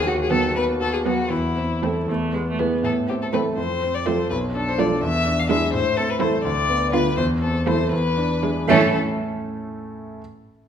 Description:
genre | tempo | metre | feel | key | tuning
quick classical-period movement for piano quintet | 77-85 BPM (dotted quarters) | 6/8 | rubato | A minor | A4 = 438 Hz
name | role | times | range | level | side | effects
rich violin | melody | 0.0-9.0 s | E4 to F5 | -24 LUFS | left 4 dB | none
clear concert grand piano | accompaniment | 0.0-10.2 s | B1 to E5 | -23 LUFS | equal | none
rich cello | second line | 0.3-9.0 s | D3 to F#3 | -27 LUFS | right 7 dB | none
warm violin | second line | 0.3-9.0 s | B3 to F4 | -29 LUFS | left 1 dB | none
rich viola | accompaniment | 0.3-9.0 s | G#3 to B3 | -27 LUFS | right 4 dB | none
room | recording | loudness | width
wet recital hall reverb, RT60 1.6 s | minimal, uncompressed stereo recording | -19 LUFS | side -8 dB against mid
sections
0.0-8.7 A section; 8.7-10.2 B section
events
none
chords
0.0 B/D#; 1.3 Am/E; 2.1 E; 2.8 Am; 3.6 F; 4.3 Bm7b5; 5.0 E7; 5.7 Am; 6.4 Bdim/D; 7.2 Am/E; 7.9 E7; 8.7 A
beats
0.55 | 1.31 2.09 | 2.84 3.57 | 4.30 5.02 | 5.73 6.44 | 7.17 7.92 | 8.69 9.43

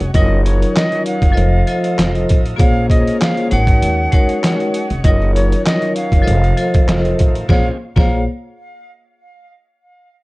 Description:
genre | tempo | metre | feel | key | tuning
hip hop, boom-bap hip-hop | 98 BPM | 4/4 | swing 54% on 16ths | Bb minor | A4 = 445 Hz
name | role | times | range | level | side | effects
bright tonewheel organ | sustained chords | 0.0-7.8 s | Bb2 to Eb4 | -29 LUFS | equal | overdrive, slow rotary speaker
upright bass | bass | 0.0-8.2 s | F1 to Eb2 | -16 LUFS | equal | tube saturation
trip hop sampler-style drum kit | drums | 0.0-8.1 s | handclaps, hi-hat, kick drum, snare drum | -14 LUFS | equal | none
bright concert flute | melody | 0.1-8.2 s | Db5 to Gb5 | -22 LUFS | right 1 dB | digital delay
vibraphone with hard mallets | accompaniment | 0.2-8.2 s | F3 to Eb5 | -19 LUFS | left 1 dB | none
room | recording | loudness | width
light reverb | worn, warbling old tape, cassette tape, warbly pitch drift | -12 LUFS | side -22 dB against mid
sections
0.0-7.5 A section; 7.5-9.9 B section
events
none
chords
0.1 Ebm7/Gb; 1.4 F7; 2.6 Bbm7; 3.5 Ab9sus4; 5.0 Ebm7/Gb; 6.3 F7; 7.5 Bbm7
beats
| 0.14 0.76 1.37 1.98 | 2.59 3.21 3.82 4.43 | 5.04 5.66 6.27 6.88 | 7.49 8.10

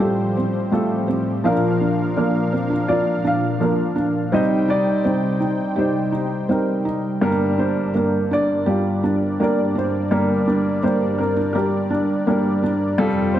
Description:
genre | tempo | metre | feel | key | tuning
acoustic folk-pop ballad | 83 BPM | 4/4 | straight | G minor | A4 = 440 Hz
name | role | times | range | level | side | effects
dark upright piano | melody | 0.0-13.4 s | F1 to F5 | -20 LUFS | equal | none
warm analog pad | sustained chords | 0.0-13.4 s | F2 to G5 | -26 LUFS | left 1 dB | chorus
felt-muted upright piano | arpeggios | 0.0-13.4 s | F3 to G4 | -23 LUFS | right 2 dB | tape echo
room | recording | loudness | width
moderate large studio reverb, RT60 1.2 s | none | -18 LUFS | side -11 dB against mid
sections
0.0-13.4 A section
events
none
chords
0.0 Fadd9/A; 1.4 Bb; 4.3 Cm; 7.2 Gm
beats
0.00 0.72 | 1.45 2.17 2.89 3.61 | 4.33 5.05 5.78 6.50 | 7.22 7.95 8.67 9.39 | 10.11 10.83 11.55 12.27 | 12.99

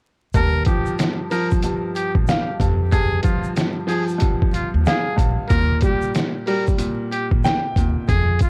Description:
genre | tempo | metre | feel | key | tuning
hip hop, boom-bap hip-hop | 93 BPM | 4/4 | swing 63% on 16ths | unclear | A4 = 439 Hz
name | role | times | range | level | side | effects
clear concert grand piano | accompaniment | 0.3-8.1 s | G2 to G5 | -26 LUFS | equal | cassette tape, high-pass filter, low-pass filter
upright bass | bass | 0.3-8.4 s | Bb1 to F2 | -23 LUFS | equal | transformer saturation
trip hop sampler-style drum kit | drums | 0.3-8.5 s | hi-hat, kick drum, snare drum | -23 LUFS | equal | overdrive
tube shaker | percussion | 0.3-8.5 s | none | -49 LUFS | equal | none
trumpet with metal mute | melody | 0.4-8.5 s | F4 to Bb4 | -28 LUFS | equal | high-pass filter, low-pass filter, digital delay
room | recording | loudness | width
light reverb | worn, warbling old tape, cassette tape, vinyl crackle, warbly pitch drift | -20 LUFS | mono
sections
0.3-8.5 A section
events
none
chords
0.3 Ebadd9 (rootless); 5.5 Eb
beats
| 0.34 0.99 1.63 2.28 | 2.92 3.57 4.21 4.86 | 5.50 6.15 6.79 7.44 | 8.09

